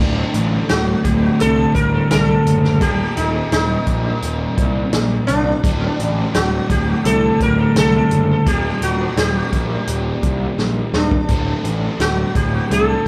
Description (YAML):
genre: psychedelic rock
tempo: 85 BPM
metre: 4/4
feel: straight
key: D phrygian dominant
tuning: A4 = 443 Hz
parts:
  - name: sitar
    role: melody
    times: 0.0-13.1 s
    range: D4 to Bb4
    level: -23 LUFS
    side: equal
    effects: tape echo
  - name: cranked stack guitar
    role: riff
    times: 0.0-13.1 s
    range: D2 to G4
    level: -22 LUFS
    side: equal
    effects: overdrive, phaser, tape echo
  - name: fuzz picked electric bass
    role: bass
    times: 0.0-13.1 s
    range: D1 to C2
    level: -23 LUFS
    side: equal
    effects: overdrive
  - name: vintage drum kit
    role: drums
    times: 0.3-12.9 s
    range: hi-hat, kick drum, snare drum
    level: -24 LUFS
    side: equal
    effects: none
room: small room ambience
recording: echo-heavy mix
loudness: -17 LUFS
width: mono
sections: 0.0-13.1 A section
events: drum fill 10.6-11.3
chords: 0.0 Dsus4; 2.8 Eb; 5.6 Dsus4; 8.5 Eb; 11.3 Dsus4